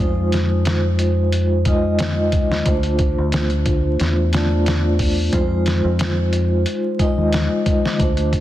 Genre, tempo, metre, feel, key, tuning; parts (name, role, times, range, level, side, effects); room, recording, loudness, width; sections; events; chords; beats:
trip hop; 90 BPM; 4/4; straight; F minor; A4 = 440 Hz
vibraphone with soft mallets; accompaniment; 0.0-8.4 s; Ab3 to Eb5; -20 LUFS; left 1 dB; tremolo, vintage 12-bit sampler grit, tape echo
deep dub fingered electric bass; bass; 0.0-8.4 s; D2 to F2; -19 LUFS; equal
trip hop sampler-style drum kit; drums; 0.3-8.4 s; hi-hat, kick drum, snare drum; -21 LUFS; equal
light reverb; dense, heavily limited modern master, vinyl crackle; -16 LUFS; side -14 dB against mid
0.0-8.4 A section
0.0 Fm7; 2.7 Dm7; 5.3 Fm7
| 0.00 0.67 1.33 2.00 | 2.67 3.33 4.00 4.67 | 5.33 6.00 6.67 7.33 | 8.00